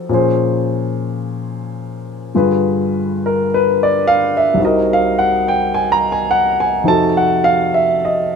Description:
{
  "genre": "jazz ballad",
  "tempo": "53 BPM",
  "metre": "4/4",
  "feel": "swing 66% on 8ths",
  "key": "unclear",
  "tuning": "A4 = 441 Hz",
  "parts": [
    { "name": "dark grand piano", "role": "solo", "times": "0.0-8.4 s", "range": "C2 to Bb5", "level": "-14 LUFS", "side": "equal", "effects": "none" }
  ],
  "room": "moderate echo chamber reverb, RT60 2.2 s",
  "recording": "minimal, uncompressed stereo recording",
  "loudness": "-13 LUFS",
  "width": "side -6 dB against mid",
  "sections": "0.0-8.4 A section",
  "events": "none",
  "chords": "0.1 Bbm7; 2.3 G7b9; 4.6 Cm7b5; 6.8 F7b9",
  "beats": "| 0.08 1.21 2.33 3.45 | 4.58 5.71 6.84 7.99"
}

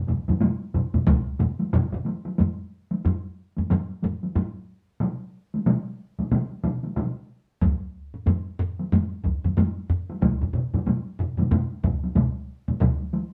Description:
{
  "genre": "japanese traditional, taiko drum ensemble",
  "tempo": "92 BPM",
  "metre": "4/4",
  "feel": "swing 60% on 16ths",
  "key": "none",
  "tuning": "none",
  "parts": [
    { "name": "taiko ensemble", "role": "percussion", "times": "0.1-13.3 s", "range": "none", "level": "-28 LUFS", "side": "equal", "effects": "none" },
    { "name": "taiko ensemble", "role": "percussion", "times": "0.1-13.0 s", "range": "none", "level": "-28 LUFS", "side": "equal", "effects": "none" },
    { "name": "taiko ensemble", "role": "percussion", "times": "0.1-13.0 s", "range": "none", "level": "-29 LUFS", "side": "equal", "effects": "none" },
    { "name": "taiko ensemble", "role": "percussion", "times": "1.1-1.3, 7.6-13.0 s", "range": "none", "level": "-31 LUFS", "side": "equal", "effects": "none" }
  ],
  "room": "moderate studio reverb, RT60 0.6 s",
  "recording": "band playing live in one room",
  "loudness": "-25 LUFS",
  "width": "mono",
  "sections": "0.0-2.4 A section; 2.4-12.8 B section",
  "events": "none",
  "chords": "none",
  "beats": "0.42 1.07 1.73 | 2.39 3.05 3.70 4.36 | 5.01 5.67 6.32 6.97 | 7.62 8.27 8.92 9.57 | 10.22 10.87 11.52 12.16 | 12.81"
}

